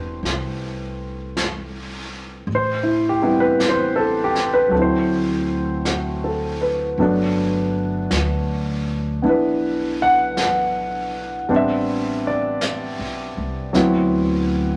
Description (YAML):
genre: jazz ballad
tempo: 53 BPM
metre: 4/4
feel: swing 66% on 8ths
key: G major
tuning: A4 = 440 Hz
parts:
  - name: warm concert grand piano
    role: accompaniment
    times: 0.0-14.8 s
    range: F#3 to F#5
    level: -22 LUFS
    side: equal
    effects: none
  - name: upright bass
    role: bass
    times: 0.0-14.8 s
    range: E1 to D2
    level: -30 LUFS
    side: equal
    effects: none
  - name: jazz brush drum kit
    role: drums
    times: 0.3-14.8 s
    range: brushed snare drum, hi-hat, snare drum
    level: -32 LUFS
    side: equal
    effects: none
room: wet studio reverb, RT60 0.8 s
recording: none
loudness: -21 LUFS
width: mono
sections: 0.0-14.8 A section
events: none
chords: 0.0 Fmaj9 (rootless); 2.5 Am7; 4.7 D9; 7.0 Gmaj7; 11.5 Am11; 13.7 D13